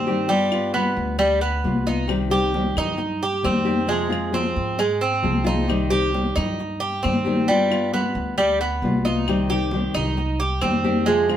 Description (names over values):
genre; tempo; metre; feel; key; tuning
latin, Cuban son and guajira; 134 BPM; 4/4; straight; C harmonic minor; A4 = 440 Hz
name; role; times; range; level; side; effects
nylon-string guitar; accompaniment; 0.0-11.4 s; C3 to G4; -24 LUFS; left 3 dB; none
Cuban tres; arpeggios; 0.0-11.4 s; G3 to G4; -22 LUFS; right 2 dB; none
upright bass; bass; 0.0-11.4 s; C2 to Ab2; -28 LUFS; equal; none
congas; percussion; 0.3-11.4 s; none; -28 LUFS; left 2 dB; none
claves; percussion; 0.5-11.4 s; none; -33 LUFS; left 6 dB; none
room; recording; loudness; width
moderate studio reverb, RT60 0.8 s; band playing live in one room; -19 LUFS; side -10 dB against mid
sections
0.0-2.1 A section; 2.1-11.4 A section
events
none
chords
0.3 G7; 2.1 Cm; 3.9 Fm; 5.7 Cm; 7.5 G7; 9.3 Cm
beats
| 0.29 0.74 1.20 1.65 | 2.10 2.54 3.00 3.44 | 3.89 4.34 4.79 5.24 | 5.69 6.14 6.59 7.04 | 7.48 7.93 8.38 8.83 | 9.28 9.72 10.17 10.62 | 11.07